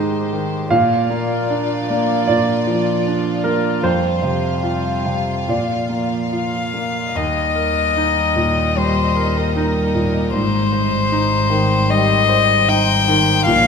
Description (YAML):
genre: neoclassical piano and strings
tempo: 76 BPM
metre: 4/4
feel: rubato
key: Eb major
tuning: A4 = 440 Hz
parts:
  - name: clear concert grand piano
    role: accompaniment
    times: 0.0-13.7 s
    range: Eb2 to F5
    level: -18 LUFS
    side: right 2 dB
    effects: none
  - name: warm chamber string section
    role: sustained chords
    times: 0.0-13.7 s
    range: F3 to F5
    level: -25 LUFS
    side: left 2 dB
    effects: none
  - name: rich violin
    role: melody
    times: 6.3-13.7 s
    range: Bb4 to G5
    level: -17 LUFS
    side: left 6 dB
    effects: none
  - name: dark double bass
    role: bass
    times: 7.2-13.7 s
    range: Ab1 to Eb2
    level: -22 LUFS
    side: left 1 dB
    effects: none
room: wet scoring stage reverb, RT60 1.7 s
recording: minimal, uncompressed stereo recording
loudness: -15 LUFS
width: side -6 dB against mid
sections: 0.0-7.2 A section; 7.2-13.7 A section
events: none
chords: 0.0 Abmaj7; 0.7 Bb; 3.8 Fsus2; 5.5 Bb; 7.2 Eb; 10.3 Abmaj7